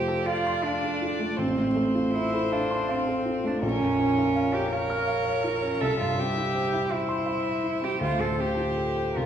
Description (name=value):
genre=classical, slow romantic movement for piano trio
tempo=54 BPM (dotted quarters)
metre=6/8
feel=uneven beats, rubato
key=F major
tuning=A4 = 439 Hz
part: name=warm violin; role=melody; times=0.0-9.3 s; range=Bb4 to E5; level=-32 LUFS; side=left 5 dB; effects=none
part: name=rich cello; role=second line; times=0.0-9.3 s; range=C4 to Bb4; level=-26 LUFS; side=right 3 dB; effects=none
part: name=dark baby grand piano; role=accompaniment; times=0.0-9.3 s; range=A1 to F6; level=-28 LUFS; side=left 1 dB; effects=none
room=wet recital hall reverb, RT60 1.7 s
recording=heard from further back in the room, vinyl crackle, nothing above 10.3 kHz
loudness=-24 LUFS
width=side -9 dB against mid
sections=0.0-9.3 A section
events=none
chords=0.0 F; 1.4 F/A; 3.6 Bbm; 5.8 C; 8.0 Dm7